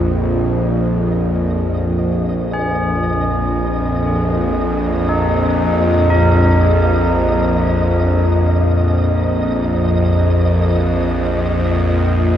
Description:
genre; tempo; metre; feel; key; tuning
dark ambient drone; free time; none; none; unclear; A4 = 436 Hz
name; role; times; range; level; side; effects
bowed-like drone; drone; 0.0-12.4 s; Bb1 to F2; -14 LUFS; equal; built-in reverb
flickering grainy texture; texture; 0.0-12.4 s; Eb5; -27 LUFS; right 1 dB; built-in reverb, shimmer reverb
tubular bells; arpeggios; 2.5-12.4 s; Eb4 to Bb4; -22 LUFS; equal; tape echo, shimmer reverb
room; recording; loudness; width
wet cathedral reverb, RT60 5.0 s; in a vast, echoing space; -14 LUFS; side -10 dB against mid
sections
0.0-12.4 A section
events
fade-in on synth texture 0.0-12.4; fade-out on tubular bells 0.0-12.4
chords
0.0 Bb5

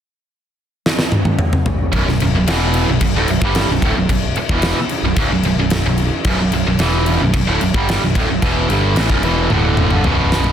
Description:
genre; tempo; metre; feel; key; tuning
hard rock; 111 BPM; 4/4; straight; B minor; A4 = 439 Hz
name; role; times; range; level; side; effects
huge arena drum kit; drums; 0.9-10.5 s; crash cymbal, kick drum, snare drum, toms; -18 LUFS; equal; none
tight distorted guitar; riff; 1.9-10.5 s; B1 to G3; -17 LUFS; right 1 dB; distortion
modern bright picked electric bass; bass; 1.9-10.5 s; B0 to A1; -20 LUFS; equal; none
room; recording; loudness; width
light reverb; dense, heavily limited modern master; -14 LUFS; side -9 dB against mid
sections
0.0-1.9 A section; 1.9-10.5 B section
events
drum fill 0.8-1.9, 9.5-10.5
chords
0.0 N.C.; 1.9 Bm

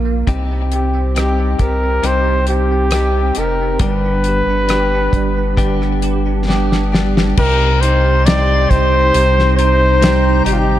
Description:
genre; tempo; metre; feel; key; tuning
pop ballad; 68 BPM; 4/4; straight; C minor; A4 = 440 Hz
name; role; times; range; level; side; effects
bell-like tine electric piano; accompaniment; 0.0-10.8 s; C3 to G4; -20 LUFS; right 4 dB; ensemble chorus
warm sub bass; bass; 0.0-10.8 s; F1 to C2; -17 LUFS; equal; none
direct-recorded clean electric guitar; arpeggios; 0.3-10.8 s; G2 to G4; -23 LUFS; left 5 dB; ping-pong delay
damped 70s drum kit; drums; 0.3-10.7 s; crash cymbal, hi-hat, kick drum, rim click, snare drum; -18 LUFS; left 1 dB; none
mellow flugelhorn; melody; 0.7-10.8 s; F4 to D5; -17 LUFS; left 1 dB; none
glassy FM pad; sustained chords; 8.0-10.8 s; Eb4 to C6; -22 LUFS; left 2 dB; ensemble chorus, built-in reverb
room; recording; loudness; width
light reverb, small room ambience; dark, warm production; -12 LUFS; side -12 dB against mid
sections
0.0-7.4 A section; 7.4-10.8 B section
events
drum fill 6.5-7.4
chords
0.3 Cm; 3.8 G; 7.4 Cm

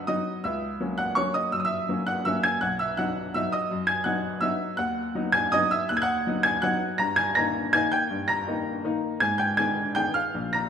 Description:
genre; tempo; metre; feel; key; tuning
classical, piano waltz; 163 BPM; 3/4; uneven beats, rubato; B major, Eb major from 7.0 s; A4 = 440 Hz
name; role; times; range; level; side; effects
clear upright piano; solo; 0.0-10.7 s; Bb1 to Bb6; -23 LUFS; equal; none
room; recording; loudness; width
wet recital hall reverb, RT60 1.5 s; minimal, uncompressed stereo recording; -23 LUFS; side -7 dB against mid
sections
0.0-10.7 A section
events
none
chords
0.4 F#7/C#; 2.6 B; 4.8 B/D#; 7.0 Eb/G; 9.2 Abm

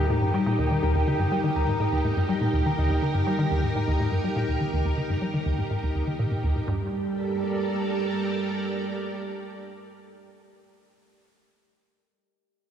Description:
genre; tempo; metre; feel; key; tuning
ambient, sequencer-driven space music; 123 BPM; 4/4; straight; G minor; A4 = 440 Hz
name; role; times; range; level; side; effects
string machine, full ensemble; sustained chords; 0.0-10.5 s; G3 to D5; -29 LUFS; right 1 dB; ensemble chorus
Celtic harp; arpeggios; 0.0-9.0 s; G4 to E6; -34 LUFS; moving between left 7 dB and left 1 dB; auto-pan, tape echo
resonant blip pluck; riff; 0.0-6.9 s; Eb2 to G3; -25 LUFS; equal; chorus, tape echo
pulsing gated texture; texture; 0.0-6.7 s; G5; -35 LUFS; right 5 dB; chorus, built-in reverb
room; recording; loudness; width
wet lush hall reverb, RT60 2.9 s; dark, warm production; -23 LUFS; side -9 dB against mid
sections
0.0-6.7 A section; 6.7-10.6 B section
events
fade-out on harp 0.0-6.7; filter sweep on synth arpeggio sound 0.0-6.7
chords
0.0 Eb; 6.7 Gmadd9

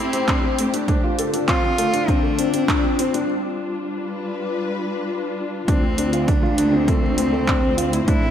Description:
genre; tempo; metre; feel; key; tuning
piano and strings electronica; 100 BPM; 4/4; straight; D minor; A4 = 440 Hz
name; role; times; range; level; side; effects
dark cello; melody; 0.0-8.3 s; A3 to F4; -23 LUFS; equal; digital delay
dark studio string section; sustained chords; 0.0-8.3 s; D3 to C5; -26 LUFS; left 2 dB; sidechain pumping
felt-muted upright piano; riff; 0.0-8.3 s; A3 to A4; -24 LUFS; left 2 dB; digital delay
deep house drum kit; drums; 0.1-8.2 s; handclaps, hi-hat; -27 LUFS; right 1 dB; overdrive, small room ambience
electronic kick drum; drums; 0.3-8.2 s; none; -21 LUFS; right 1 dB; overdrive, small room ambience
warm symphonic cello section; bass; 5.7-8.3 s; D2 to A2; -24 LUFS; right 1 dB; sidechain pumping
room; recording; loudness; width
moderate concert hall reverb, RT60 2.1 s; none; -18 LUFS; side -9 dB against mid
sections
0.0-5.7 A section; 5.7-8.3 B section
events
build-up 0.0-5.7; filter sweep on string section 0.0-5.7; break 3.3-5.7; drop 5.7-8.3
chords
0.0 Am7; 0.9 Dm7; 3.3 G7; 5.7 Dm7

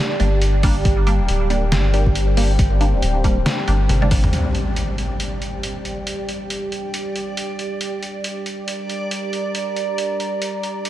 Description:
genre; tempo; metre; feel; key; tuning
deep dubstep; 138 BPM; 4/4; swing 58% on 16ths, half-time; G minor; A4 = 440 Hz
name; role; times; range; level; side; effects
deep dark ambient pad; sustained chords; 0.0-10.9 s; G4 to Bb5; -26 LUFS; right 1 dB; chorus, built-in reverb
filtered dub chord stab; stabs; 0.2-4.3 s; G3 to D4; -26 LUFS; right 1 dB; phaser, dub echo
soft dub sub bass; bass; 0.2-4.3 s; D1 to G1; -18 LUFS; equal; none
trip hop sampler-style drum kit; drums; 0.2-10.9 s; hi-hat, snare drum, toms; -25 LUFS; equal; none
electronic kick drum; drums; 0.6-4.2 s; none; -19 LUFS; equal; overdrive
impact; sound effects; 4.3-6.1 s; none; -27 LUFS; equal; none
backwards swelling texture; texture; 5.2-10.9 s; D5; -31 LUFS; right 4 dB; built-in reverb
room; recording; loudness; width
moderate huge ambient reverb, RT60 8.2 s; dreamy mix soaked in reverb; -18 LUFS; side -13 dB against mid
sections
0.0-4.3 A section; 4.3-10.9 B section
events
drum fill 3.9-4.3; impact 4.3-6.1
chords
0.0 Gm

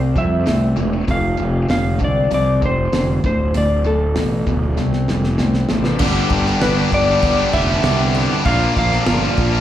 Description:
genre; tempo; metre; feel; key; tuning
classic rock; 98 BPM; 4/4; straight; unclear; A4 = 439 Hz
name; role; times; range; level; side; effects
distorted electric guitar; riff; 0.0-9.6 s; D2 to Bb4; -20 LUFS; left 1 dB; overdrive, slapback echo
fuzz fingered electric bass; bass; 0.0-9.6 s; D1 to F2; -19 LUFS; equal; overdrive
clean lap steel guitar; melody; 0.2-9.6 s; A4 to F5; -21 LUFS; left 1 dB; slapback echo, tape echo
damped 70s drum kit; drums; 0.2-9.5 s; crash cymbal, hi-hat, kick drum, snare drum; -23 LUFS; equal; none
bright tonewheel organ; sustained chords; 5.7-9.6 s; C4 to F5; -30 LUFS; equal; none
crunchy overdriven guitar; riff; 6.0-9.6 s; G2 to Bb3; -22 LUFS; right 1 dB; none
room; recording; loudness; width
light reverb, small room ambience; live gig heard through the venue's PA, club reverb; -15 LUFS; side -12 dB against mid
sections
0.0-6.0 A section; 6.0-9.6 B section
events
drum fill 4.8-6.0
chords
0.0 C; 1.1 F5; 3.2 D5; 4.8 Csus4; 6.0 G; 8.5 Bb

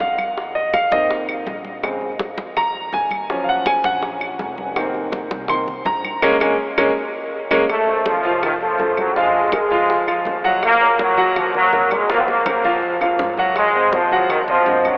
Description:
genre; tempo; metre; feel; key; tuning
latin, salsa; 164 BPM; 4/4; straight; unclear; A4 = 440 Hz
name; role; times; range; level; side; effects
clear grand piano; accompaniment; 0.0-15.0 s; Db3 to C6; -18 LUFS; equal; none
upright bass; bass; 0.0-15.0 s; F1 to Ab2; -38 LUFS; equal; none
bongos; percussion; 0.0-15.0 s; none; -30 LUFS; left 1 dB; none
congas; percussion; 0.0-15.0 s; none; -33 LUFS; equal; none
claves; percussion; 0.2-15.0 s; none; -29 LUFS; equal; none
clear trombone section; melody; 7.7-15.0 s; Eb3 to C4; -17 LUFS; equal; none
room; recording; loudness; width
wet huge ambient reverb, RT60 8.6 s; in a vast, echoing space, telephone sound; -16 LUFS; side -28 dB against mid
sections
0.0-7.7 A section; 7.7-15.0 B section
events
grand piano solo 0.0-7.7; band accent 6.2-7.7; drum fill 7.0-7.7, 12.1-13.6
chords
0.4 F7sus4; 1.8 Bbm9; 3.3 Ebm9; 4.8 F7sus4; 6.2 Bbm7; 7.7 F; 9.2 Bb5; 10.6 Ebm7; 12.1 Fsus4; 12.8 Fm; 13.6 Ab7

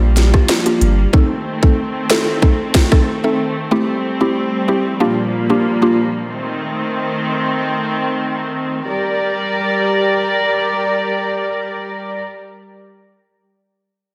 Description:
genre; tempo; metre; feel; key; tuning
dancehall; 93 BPM; 4/4; straight; G minor; A4 = 440 Hz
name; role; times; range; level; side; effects
mallet-like synth pluck; accompaniment; 0.0-6.0 s; A3 to A4; -20 LUFS; equal; chorus, phaser, sidechain pumping
warm studio string section; sustained chords; 0.0-12.2 s; Bb2 to D5; -21 LUFS; equal; sidechain pumping
punchy sub bass; bass; 0.0-1.1 s; G1 to Bb1; -15 LUFS; equal; none
island pop drum kit; drums; 0.2-3.1 s; hi-hat, kick drum, rim click, snare drum; -16 LUFS; equal; overdrive
room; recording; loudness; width
wet lush hall reverb, RT60 1.8 s, digital ambience; dreamy mix soaked in reverb; -17 LUFS; mono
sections
0.0-8.9 A section; 8.9-11.5 B section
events
none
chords
0.0 Gm7/Bb; 1.1 Adim; 3.7 Am7; 5.0 Gm7/Bb; 6.3 Adim; 8.9 Gm

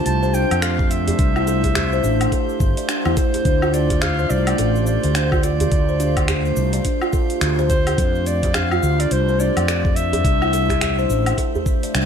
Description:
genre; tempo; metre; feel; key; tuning
organic downtempo; 106 BPM; 4/4; swing 60% on 16ths; D minor; A4 = 440 Hz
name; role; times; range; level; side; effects
warm clarinet; melody; 0.0-11.9 s; C5 to A5; -25 LUFS; left 1 dB; tape echo
warbly tape-like pad; sustained chords; 0.0-12.1 s; A3 to F5; -28 LUFS; equal; chorus, built-in reverb, sidechain pumping
buzzing kalimba; arpeggios; 0.0-12.0 s; D4 to D5; -24 LUFS; equal; tape echo
drifting glass-harmonics texture; texture; 0.0-12.1 s; C5; -33 LUFS; right 3 dB; chorus, built-in reverb
fretless electric bass; bass; 0.1-12.1 s; G1 to F2; -21 LUFS; equal; sidechain pumping
afro-pop drum kit; drums; 0.1-12.1 s; finger snaps, hi-hat, shaker, woodblock; -26 LUFS; equal; none
electronic kick drum; drums; 0.8-11.8 s; none; -20 LUFS; equal; none
djembe; percussion; 0.8-11.8 s; none; -28 LUFS; right 2 dB; none
room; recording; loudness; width
light reverb; none; -16 LUFS; side -7 dB against mid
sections
0.0-12.1 A section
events
none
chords
0.0 F; 1.2 C; 3.5 Dm; 8.0 F; 10.2 C

